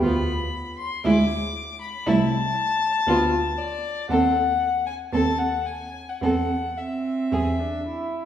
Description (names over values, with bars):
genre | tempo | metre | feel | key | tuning
quick classical-period movement for string quartet | 116 BPM | 4/4 | uneven beats, rubato | A minor | A4 = 441 Hz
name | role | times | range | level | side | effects
rich violin | melody | 0.0-8.1 s | D5 to D6 | -26 LUFS | left 5 dB | none
warm violin | second line | 0.0-7.6 s | E4 to A4 | -28 LUFS | left 1 dB | none
warm viola | accompaniment | 0.0-8.3 s | G#3 to E4 | -25 LUFS | right 3 dB | none
rich cello | bass | 0.0-7.7 s | C2 to E2 | -28 LUFS | right 2 dB | none
room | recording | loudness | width
wet recital hall reverb, RT60 1.4 s | heard from further back in the room | -21 LUFS | side -10 dB against mid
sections
0.0-8.3 A section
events
none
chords
0.0 Bdim/D; 1.0 E7/D; 2.1 Am/C; 3.1 Bm7b5/D; 4.1 D#dim7; 6.2 Am/E; 7.3 E